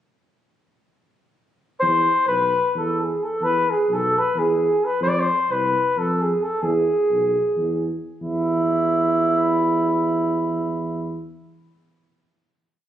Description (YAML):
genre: balkan folk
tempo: free time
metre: none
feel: none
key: unclear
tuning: A4 = 440 Hz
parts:
  - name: mellow flugelhorn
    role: melody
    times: 1.8-11.2 s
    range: E4 to D5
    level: -19 LUFS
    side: equal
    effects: none
  - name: mellow tuba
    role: bass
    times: 1.8-11.2 s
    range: B1 to F2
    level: -25 LUFS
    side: right 1 dB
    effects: none
room: moderate recital hall reverb, RT60 1.5 s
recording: recorded on a phone in the room, club reverb, compression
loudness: -18 LUFS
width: side -11 dB against mid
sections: 1.8-8.2 A section; 8.2-11.3 final note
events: none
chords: 1.8 E; 5.0 F5; 6.6 E; 8.2 N.C.